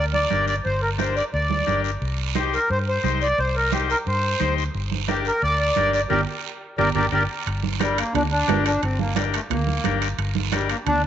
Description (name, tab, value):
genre	latin, cumbia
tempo	176 BPM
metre	4/4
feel	straight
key	G minor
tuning	A4 = 439 Hz
part	accordion	melody	0.0-11.1 s	G3 to D5	-23 LUFS	equal	none
part	vintage muted fingered electric bass	bass	0.0-11.1 s	G1 to G2	-26 LUFS	equal	none
part	congas	percussion	0.1-11.0 s	none	-29 LUFS	right 11 dB	none
part	combo organ	accompaniment	0.3-10.8 s	D4 to C5	-28 LUFS	left 10 dB	none
part	guiro	percussion	0.3-11.1 s	none	-34 LUFS	right 14 dB	none
part	timbales	percussion	7.5-11.0 s	none	-30 LUFS	right 12 dB	none
room	wet spring reverb, RT60 1.9 s, studio ambience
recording	1960s-style stereo with parts hard left and right, nothing above 7.9 kHz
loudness	-20 LUFS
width	side -10 dB against mid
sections	0.0-7.5 A section; 7.5-11.1 A section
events	band accent 6.1-7.5; drum fill 6.6-7.5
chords	0.0 Gm; 2.0 Cm; 4.7 Gm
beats	0.31 | 0.65 0.99 1.33 1.68 | 2.02 2.36 2.70 3.04 | 3.38 3.72 4.06 4.40 | 4.74 5.08 5.42 5.76 | 6.10 6.44 6.78 7.12 | 7.46 7.80 8.14 8.48 | 8.82 9.16 9.51 9.85 | 10.19 10.53 10.87